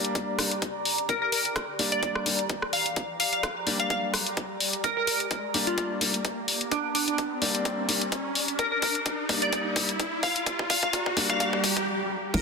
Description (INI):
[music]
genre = bass house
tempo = 128 BPM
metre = 4/4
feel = swing 55% on 16ths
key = G minor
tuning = A4 = 440 Hz
[part]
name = bright grand piano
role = stabs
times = 0.0-11.6 s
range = G3 to D4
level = -32 LUFS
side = left 2 dB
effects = sidechain pumping, low-pass filter, ping-pong delay
[part]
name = garage drum kit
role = drums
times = 0.0-12.4 s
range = crash cymbal, hi-hat, rim click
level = -28 LUFS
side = left 2 dB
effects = high-pass filter on hats, small room reverb, soft clipping on snare, high-pass filter on snare, high-pass filter on cymbals
[part]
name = riser, swell and impact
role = sound effects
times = 0.1-12.4 s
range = none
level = -34 LUFS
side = equal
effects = none
[part]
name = airy breathy pad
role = texture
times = 0.0-12.4 s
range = G4 to Bb5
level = -35 LUFS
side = right 2 dB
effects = chorus, phaser, sidechain pumping
[part]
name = electronic kick drum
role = drums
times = 0.2-12.4 s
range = none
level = -33 LUFS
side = equal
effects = high-pass filter on kick, small room reverb, high-pass filter on room
[part]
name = glassy wavetable pluck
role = melody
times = 1.1-12.4 s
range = D4 to F5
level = -29 LUFS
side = equal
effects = chorus, ping-pong delay
[part]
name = vowel-sweep wobble bass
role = bass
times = 12.3-12.4 s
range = G1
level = -24 LUFS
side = equal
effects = chorus, tube saturation, sidechain pumping
[sound]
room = moderate lush hall reverb, RT60 2.3 s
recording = dense, heavily limited modern master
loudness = -24 LUFS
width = side -4 dB against mid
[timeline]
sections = 0.0-12.3 A section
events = build-up 0.0-12.3; riser 0.1-11.9; drum fill 4.8-11.9; swell 11.4-12.3; break 11.9-12.3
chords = 0.0 Gm